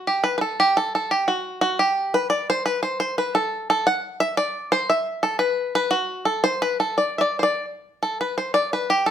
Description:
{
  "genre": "celtic folk",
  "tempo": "116 BPM (dotted quarters)",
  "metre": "6/8",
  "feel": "straight",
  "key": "unclear",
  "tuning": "A4 = 440 Hz",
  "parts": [
    { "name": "bluegrass banjo", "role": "solo", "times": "0.0-9.1 s", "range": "F#4 to F#5", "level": "-20 LUFS", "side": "equal", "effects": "none" }
  ],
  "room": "moderate studio reverb, RT60 0.9 s",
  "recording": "minimal, uncompressed stereo recording",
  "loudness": "-20 LUFS",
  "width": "side -9 dB against mid",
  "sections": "0.0-8.0 A section; 8.0-9.1 B section",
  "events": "none",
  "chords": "none"
}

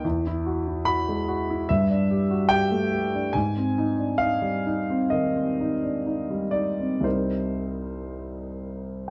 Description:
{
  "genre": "classical, impressionist solo piano",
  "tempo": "57-74 BPM",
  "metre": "4/4",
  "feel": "rubato",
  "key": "unclear",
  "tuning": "A4 = 440 Hz",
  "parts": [
    { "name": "clear grand piano", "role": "solo", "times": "0.0-9.1 s", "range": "C2 to B5", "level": "-25 LUFS", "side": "equal", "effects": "none" }
  ],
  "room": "moderate large studio reverb, RT60 0.9 s",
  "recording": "dark, warm production",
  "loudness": "-25 LUFS",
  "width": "mono",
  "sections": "0.0-9.1 A section",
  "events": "none",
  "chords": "0.0 Eadd9; 1.7 Gsus2; 3.4 Abmaj7; 7.0 Cm7"
}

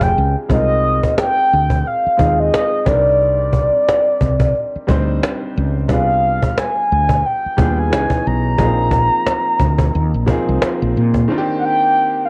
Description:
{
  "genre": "R&B, neo-soul",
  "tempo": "89 BPM",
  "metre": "4/4",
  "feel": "swing 58% on 16ths",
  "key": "C minor",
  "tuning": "A4 = 438 Hz",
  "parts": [
    { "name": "mellow horn-like synth lead", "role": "melody", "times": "0.0-12.3 s", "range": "D5 to Bb5", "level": "-19 LUFS", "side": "equal", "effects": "chorus, cassette tape" },
    { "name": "clear grand piano", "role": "accompaniment", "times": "0.0-12.3 s", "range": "Eb3 to C5", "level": "-25 LUFS", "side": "equal", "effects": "cassette tape" },
    { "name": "woody fretless electric bass", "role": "bass", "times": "0.0-11.3 s", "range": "F1 to Bb2", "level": "-20 LUFS", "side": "equal", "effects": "none" },
    { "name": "cajon", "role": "drums", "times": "0.0-11.3 s", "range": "none", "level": "-22 LUFS", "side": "equal", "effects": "none" }
  ],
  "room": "light reverb, small room ambience",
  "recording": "home recording on cassette",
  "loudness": "-16 LUFS",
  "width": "mono",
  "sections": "0.5-11.3 A section; 11.3-12.3 B section",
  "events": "none",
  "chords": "0.0 Bb13 (rootless); 0.5 Bb9sus4/C; 2.9 Cm9; 5.9 G7b9/C; 7.9 Dbm9; 8.6 Bb9sus4; 11.3 Cm9"
}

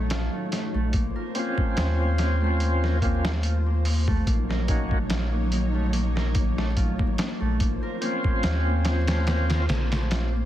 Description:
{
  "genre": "trip hop",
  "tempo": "72 BPM",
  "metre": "4/4",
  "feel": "swing 54% on 16ths",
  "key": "Bb harmonic minor",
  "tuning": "A4 = 438 Hz",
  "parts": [
    { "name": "string machine, cellos", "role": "sustained chords", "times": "0.0-10.5 s", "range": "Gb3 to Db5", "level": "-33 LUFS", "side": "equal", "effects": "ensemble chorus" },
    { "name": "Celtic harp", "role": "arpeggios", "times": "0.0-10.5 s", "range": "A3 to Bb4", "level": "-32 LUFS", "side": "left 1 dB", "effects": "tape echo" },
    { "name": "soft dub sub bass", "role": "bass", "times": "0.0-10.5 s", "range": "Bb1 to Eb2", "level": "-24 LUFS", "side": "equal", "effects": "none" },
    { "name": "boom bap sampler-style drum kit", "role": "drums", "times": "0.1-10.3 s", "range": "hi-hat, kick drum, snare drum", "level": "-27 LUFS", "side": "equal", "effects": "soft clipping on snare" },
    { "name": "overdriven tonewheel organ", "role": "accompaniment", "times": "1.4-9.7 s", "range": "Bb3 to Gb4", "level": "-30 LUFS", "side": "equal", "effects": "slow rotary speaker, tremolo, low-pass filter, tape echo" }
  ],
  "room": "little or no reverb",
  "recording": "dense, heavily limited modern master, vinyl crackle",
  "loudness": "-22 LUFS",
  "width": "side -12 dB against mid",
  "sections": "0.0-10.5 A section",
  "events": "none",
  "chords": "0.0 F7b9b13/Bb; 0.9 Bbmadd9; 4.3 Gb6/Bb; 7.6 Bbmadd9"
}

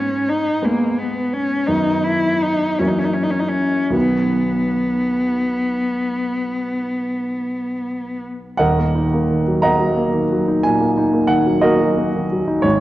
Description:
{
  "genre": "classical, romantic duo for cello and grand piano",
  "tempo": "51-62 BPM (dotted quarters)",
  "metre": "12/8",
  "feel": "rubato",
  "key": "unclear",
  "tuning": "A4 = 442 Hz",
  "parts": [
    { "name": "dark cello", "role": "melody", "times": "0.0-8.2 s", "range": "A#3 to E4", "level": "-19 LUFS", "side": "left 1 dB", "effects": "none" },
    { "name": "warm grand piano", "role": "accompaniment", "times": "0.0-12.8 s", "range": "D#1 to A#5", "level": "-18 LUFS", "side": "equal", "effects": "none" }
  ],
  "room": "moderate concert hall reverb, RT60 1.8 s",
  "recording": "worn, warbling old tape, cassette tape, warbly pitch drift",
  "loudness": "-16 LUFS",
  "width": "side -15 dB against mid",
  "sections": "0.0-8.6 A section; 8.6-12.8 B section",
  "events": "none",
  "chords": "0.0 G#m; 1.7 B/F#; 2.8 F#7; 3.9 B; 8.6 D#m"
}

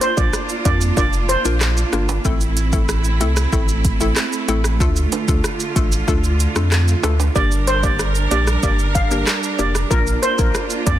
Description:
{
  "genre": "dancehall",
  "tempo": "94 BPM",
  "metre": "4/4",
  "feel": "straight",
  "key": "G dorian",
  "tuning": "A4 = 440 Hz",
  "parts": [
    { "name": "steel pan", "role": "melody", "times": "0.0-1.4, 7.4-11.0 s", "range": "Bb4 to F5", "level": "-21 LUFS", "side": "right 1 dB", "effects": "ping-pong delay" },
    { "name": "bright studio string section", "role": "sustained chords", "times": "0.0-11.0 s", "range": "D3 to Bb4", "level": "-25 LUFS", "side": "right 4 dB", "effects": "sidechain pumping" },
    { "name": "afro-pop drum kit", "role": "drums", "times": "0.0-11.0 s", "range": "handclaps, hi-hat, kick drum, rim click, shaker", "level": "-20 LUFS", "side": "equal", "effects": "none" },
    { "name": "maracas and timbales", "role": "percussion", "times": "0.0-11.0 s", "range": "none", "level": "-30 LUFS", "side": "right 7 dB", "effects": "none" },
    { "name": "hollow square pluck", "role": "accompaniment", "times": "0.2-11.0 s", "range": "A3 to Bb4", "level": "-25 LUFS", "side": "left 4 dB", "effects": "chorus, sidechain pumping" },
    { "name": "sub bass with octave", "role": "bass", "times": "0.2-11.0 s", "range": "F1 to F2", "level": "-19 LUFS", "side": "equal", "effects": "none" }
  ],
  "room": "little or no reverb",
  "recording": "dense, heavily limited modern master",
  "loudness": "-15 LUFS",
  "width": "side -12 dB against mid",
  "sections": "0.0-11.0 A section",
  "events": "none",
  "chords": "0.0 Gm; 2.2 Am; 4.8 Dm; 7.4 Gm"
}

